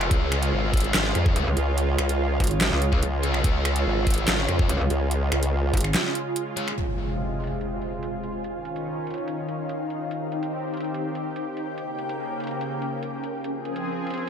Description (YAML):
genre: heavy wobble dubstep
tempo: 144 BPM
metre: 4/4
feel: half-time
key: unclear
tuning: A4 = 440 Hz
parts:
  - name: lush unison pad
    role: sustained chords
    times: 0.0-14.3 s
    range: C3 to Ab4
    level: -31 LUFS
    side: equal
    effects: chorus, vintage 12-bit sampler grit, sidechain pumping
  - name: thick fuzz guitar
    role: stabs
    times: 0.0-6.7 s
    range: F4 to Db5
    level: -31 LUFS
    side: left 3 dB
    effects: distortion, tape echo
  - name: formant-sweep wobble bass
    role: bass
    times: 0.0-5.7 s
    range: Ab1 to F2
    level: -24 LUFS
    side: equal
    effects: chorus, overdrive
  - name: dubstep drum kit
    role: drums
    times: 0.0-14.3 s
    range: finger snaps, handclaps, hi-hat, snare drum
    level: -27 LUFS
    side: equal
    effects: low-pass filter on hats, low-pass filter on snare, low-pass filter on room
  - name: ethereal airy pad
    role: texture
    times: 0.0-14.3 s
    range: C4 to Ab5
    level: -31 LUFS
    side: right 2 dB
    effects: ensemble chorus, built-in reverb, sidechain pumping
  - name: electronic kick drum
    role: drums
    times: 0.1-5.8 s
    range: none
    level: -23 LUFS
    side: equal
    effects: none
  - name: metallic wobble bass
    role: bass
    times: 1.4-5.9 s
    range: Ab1 to Db2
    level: -24 LUFS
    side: equal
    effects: chorus, overdrive
  - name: impact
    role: sound effects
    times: 6.8-8.4 s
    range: none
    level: -33 LUFS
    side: equal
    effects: none
room: light reverb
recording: none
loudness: -23 LUFS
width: side -8 dB against mid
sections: 0.0-6.8 A section; 6.8-14.3 B section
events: drop 0.0-6.8; break 5.9-6.8; impact 6.8-8.4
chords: 0.1 Db; 6.8 Fm; 8.4 Dbadd9; 10.1 Cm; 11.8 Gdim; 13.4 Fm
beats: | 0.11 0.53 0.94 1.36 | 1.78 2.19 2.61 3.03 | 3.44 3.86 4.28 4.69 | 5.11 5.53 5.94 6.36 | 6.78 7.19 7.61 8.03 | 8.44 8.86 9.28 9.69 | 10.11 10.53 10.94 11.36 | 11.78 12.19 12.61 13.03 | 13.44 13.86 14.28